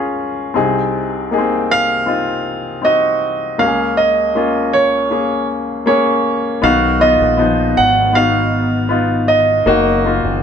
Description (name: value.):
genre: pop ballad.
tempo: 79 BPM.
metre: 4/4.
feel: straight.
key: unclear.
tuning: A4 = 441 Hz.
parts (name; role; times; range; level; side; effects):
clear baby grand piano; accompaniment; 0.0-10.4 s; C2 to Bb4; -16 LUFS; left 3 dB; none.
clear concert grand piano; melody; 1.7-10.4 s; Db5 to Gb5; -15 LUFS; right 2 dB; none.
lush unison pad; sustained chords; 7.7-10.4 s; Eb3 to Eb4; -24 LUFS; right 1 dB; chorus.
fingered electric bass with an envelope filter; bass; 6.6-10.4 s; Gb1 to Cb2; -20 LUFS; equal; none.
room: moderate studio reverb, RT60 0.8 s.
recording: band playing live in one room.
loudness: -13 LUFS.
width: side -7 dB against mid.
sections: 0.0-6.6 A section; 6.6-10.4 B section.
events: none.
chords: 0.0 Db; 0.6 Ab/C; 3.6 Bbm7/Db; 6.6 Cb; 9.7 Gb6.